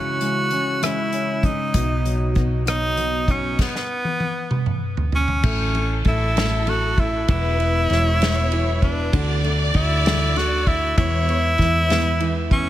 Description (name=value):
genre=six-eight pop ballad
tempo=65 BPM (dotted quarters)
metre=6/8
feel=straight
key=A major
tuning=A4 = 440 Hz
part: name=bright tenor saxophone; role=melody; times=0.0-12.7 s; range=B3 to F#4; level=-23 LUFS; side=equal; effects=tape echo
part: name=felt-muted upright piano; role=accompaniment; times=0.0-12.7 s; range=B2 to C#4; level=-28 LUFS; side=left 3 dB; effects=none
part: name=fingerpicked steel-string acoustic guitar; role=arpeggios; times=0.0-12.7 s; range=E2 to F#4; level=-30 LUFS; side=right 6 dB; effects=none
part: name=hollow-body short-scale fingered electric bass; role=bass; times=0.0-12.7 s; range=E1 to E2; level=-22 LUFS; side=equal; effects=none
part: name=unplugged drum kit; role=drums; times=0.2-12.7 s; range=crash cymbal, hi-hat, kick drum, ride cymbal, rim click, snare drum, toms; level=-23 LUFS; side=equal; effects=none
part: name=warm studio violin section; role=second line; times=5.4-12.5 s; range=A4 to D5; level=-29 LUFS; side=left 1 dB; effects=none
room=little or no reverb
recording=none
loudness=-18 LUFS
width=side -13 dB against mid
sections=0.0-5.4 A section; 5.4-12.7 B section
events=drum fill 3.6-5.4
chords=0.0 C#m; 1.7 B; 3.6 N.C.; 5.4 A6; 7.3 Eadd9; 9.1 D; 11.0 E